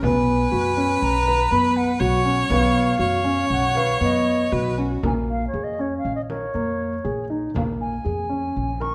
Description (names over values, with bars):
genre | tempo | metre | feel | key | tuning
contemporary instrumental, chamber music in an uneven meter | 119 BPM | 5/4 | straight | unclear | A4 = 437 Hz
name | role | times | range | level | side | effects
bright reedy baroque flute | melody | 0.0-8.9 s | Db5 to Db6 | -28 LUFS | equal | none
rich viola | second line | 0.0-5.0 s | F#4 to C#5 | -26 LUFS | equal | none
dark concert grand piano | arpeggios | 0.0-8.9 s | Bb3 to B4 | -26 LUFS | equal | none
upright bass | bass | 0.0-8.9 s | Bb1 to F#2 | -29 LUFS | equal | none
frame drum | percussion | 0.0-8.9 s | none | -35 LUFS | equal | none
room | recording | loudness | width
wet recital hall reverb, RT60 1.6 s | none | -22 LUFS | mono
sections
0.0-5.0 A section; 5.0-8.9 B section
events
none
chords
0.0 Bsus2; 5.0 Bbm7